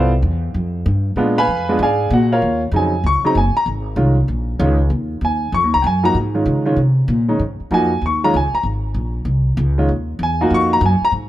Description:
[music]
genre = jazz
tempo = 193 BPM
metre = 4/4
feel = swing 64% on 8ths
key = Eb dorian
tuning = A4 = 441 Hz
[part]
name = warm baby grand piano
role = accompaniment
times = 0.0-11.1 s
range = Db3 to Db6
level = -17 LUFS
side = equal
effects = none
[part]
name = upright bass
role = bass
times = 0.0-11.3 s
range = Gb1 to Db3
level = -18 LUFS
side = equal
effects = none
[sound]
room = small room reverb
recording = dry, close 1970s-style studio recording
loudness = -15 LUFS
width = side -14 dB against mid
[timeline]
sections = 0.0-2.4 A section; 2.4-11.3 A section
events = none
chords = 0.0 G7sus4; 1.2 Bb7b9; 2.4 Eb9sus4

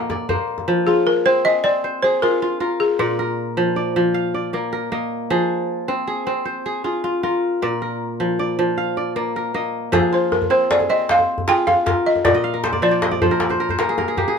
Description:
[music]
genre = west african traditional, West African string and xylophone music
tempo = 104 BPM (dotted quarters)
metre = 12/8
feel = straight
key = F dorian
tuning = A4 = 441 Hz
[part]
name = kora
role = arpeggios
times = 0.0-14.4 s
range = Bb2 to F5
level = -20 LUFS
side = equal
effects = none
[part]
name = djembe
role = percussion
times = 0.1-0.7, 9.9-14.3 s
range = none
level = -23 LUFS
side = left 1 dB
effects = none
[part]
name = balafon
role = melody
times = 0.9-3.5, 10.1-14.3 s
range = F4 to G5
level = -18 LUFS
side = equal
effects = none
[sound]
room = moderate studio reverb, RT60 0.6 s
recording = minimal, uncompressed stereo recording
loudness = -17 LUFS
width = side -6 dB against mid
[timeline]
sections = 0.7-14.4 A section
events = kora fill 12.2-14.4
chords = 0.0 Bb; 0.7 Fm; 3.0 Bb; 5.3 Fm; 7.6 Bb; 9.9 Fm; 12.2 Bb

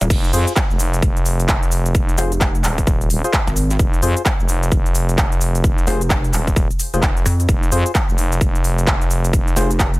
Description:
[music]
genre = bass house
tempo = 130 BPM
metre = 4/4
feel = swing 61% on 16ths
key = F minor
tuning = A4 = 440 Hz
[part]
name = pulsing pluck wobble bass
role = bass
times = 0.0-10.0 s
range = Eb1 to F2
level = -18 LUFS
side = equal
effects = chorus, sidechain pumping
[part]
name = big-room dance drum kit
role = drums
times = 0.0-10.0 s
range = cabasa, crash cymbal, handclaps, hi-hat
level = -23 LUFS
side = equal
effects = overdrive
[part]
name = growling FM bass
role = bass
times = 0.1-9.6 s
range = Eb1 to F2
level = -19 LUFS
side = equal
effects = tube saturation, sidechain pumping
[part]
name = electronic kick drum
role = drums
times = 0.1-9.9 s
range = none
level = -18 LUFS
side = equal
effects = overdrive
[part]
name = percussive organ stab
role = stabs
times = 0.3-9.7 s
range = F4 to C5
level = -26 LUFS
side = left 3 dB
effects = chorus, sidechain pumping, dub echo
[sound]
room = digital ambience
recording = none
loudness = -15 LUFS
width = side -21 dB against mid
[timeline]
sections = 0.0-10.0 A section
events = none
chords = 0.0 Fm

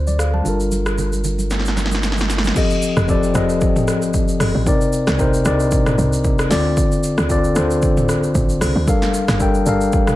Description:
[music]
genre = amapiano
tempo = 114 BPM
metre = 4/4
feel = swing 55% on 16ths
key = G minor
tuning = A4 = 440 Hz
[part]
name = mellow tine electric piano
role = accompaniment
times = 0.0-10.2 s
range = C3 to A5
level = -18 LUFS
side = left 2 dB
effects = low-pass filter
[part]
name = saturated sub bass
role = bass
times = 0.0-2.5 s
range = G1 to D2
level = -20 LUFS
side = equal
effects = none
[part]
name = deep house drum kit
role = drums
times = 0.1-10.2 s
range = crash cymbal, hi-hat, kick drum, rim click, shaker, snare drum, toms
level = -20 LUFS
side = right 1 dB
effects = none
[part]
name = congas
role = percussion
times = 0.1-2.6 s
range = none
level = -29 LUFS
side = right 5 dB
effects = none
[part]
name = tight log drum bass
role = bass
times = 3.0-10.0 s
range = F1 to D2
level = -21 LUFS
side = equal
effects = none
[sound]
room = little or no reverb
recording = none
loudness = -15 LUFS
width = side -15 dB against mid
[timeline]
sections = 0.0-2.6 A section; 2.6-10.2 B section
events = filter sweep on tine electric piano 0.0-2.6; drum fill 1.5-2.6; drop 2.6-10.2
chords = 0.5 Gm9; 2.6 F7; 4.7 Cm9; 6.5 Dm7; 8.9 Gm9

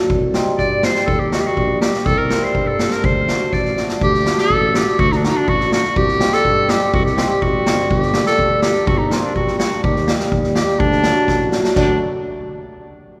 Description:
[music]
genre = klezmer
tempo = 124 BPM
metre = 2/4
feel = straight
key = D phrygian dominant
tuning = A4 = 440 Hz
[part]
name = cimbalom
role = accompaniment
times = 0.0-12.0 s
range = F#3 to F#4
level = -23 LUFS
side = equal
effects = none
[part]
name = mellow tuba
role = bass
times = 0.1-12.0 s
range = G1 to G2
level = -27 LUFS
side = equal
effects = none
[part]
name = street-band drum kit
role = drums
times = 0.1-11.9 s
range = crash cymbal, kick drum, snare drum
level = -23 LUFS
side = equal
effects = none
[part]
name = bright clarinet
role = melody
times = 0.6-12.0 s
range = D4 to D5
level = -21 LUFS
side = equal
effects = none
[sound]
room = wet church reverb, RT60 3.3 s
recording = recorded in a church or concert hall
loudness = -17 LUFS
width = mono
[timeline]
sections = 0.0-4.0 A section; 4.0-11.8 B section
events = drum fill 3.8, 11.3-11.8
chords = 0.1 Cm; 1.1 Eb; 2.1 C5; 3.0 D; 6.0 Cm; 7.9 Gm; 9.8 Eb; 10.8 D

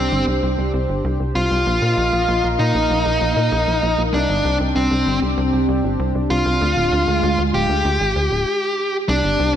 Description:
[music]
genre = synthwave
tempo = 97 BPM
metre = 4/4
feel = straight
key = unclear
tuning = A4 = 440 Hz
[part]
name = dark smooth lead guitar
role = melody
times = 0.0-9.5 s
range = C4 to G4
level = -19 LUFS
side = left 1 dB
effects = overdrive, digital delay
[part]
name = warm analog pad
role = sustained chords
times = 0.0-9.6 s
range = Ab3 to F5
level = -24 LUFS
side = right 1 dB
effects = chorus
[part]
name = tight sequencer bass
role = bass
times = 0.0-9.5 s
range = D1 to Bb2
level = -21 LUFS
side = equal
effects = none
[sound]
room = wet lush hall reverb, RT60 2.7 s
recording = bright 1980s-style digital production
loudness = -16 LUFS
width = side -10 dB against mid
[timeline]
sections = 0.0-9.1 A section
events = break 8.5-9.1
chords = 0.0 Csus2; 1.7 Bbsus4; 4.1 Csus2; 6.6 Ddim

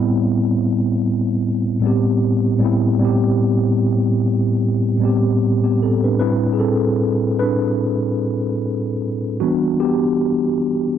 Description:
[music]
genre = hip hop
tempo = 75 BPM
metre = 4/4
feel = swing 57% on 16ths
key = A minor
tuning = A4 = 440 Hz
[part]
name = mellow tine electric piano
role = solo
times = 0.0-11.0 s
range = A2 to B4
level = -16 LUFS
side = equal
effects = medium stereo tremolo, low-pass filter
[sound]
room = moderate spring reverb, RT60 1.4 s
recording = dark, warm production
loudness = -16 LUFS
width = side -9 dB against mid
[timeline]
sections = 0.0-6.2 A section; 6.2-11.0 B section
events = tine electric piano solo 6.2-11.0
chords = 0.0 Am9; 9.4 Em7

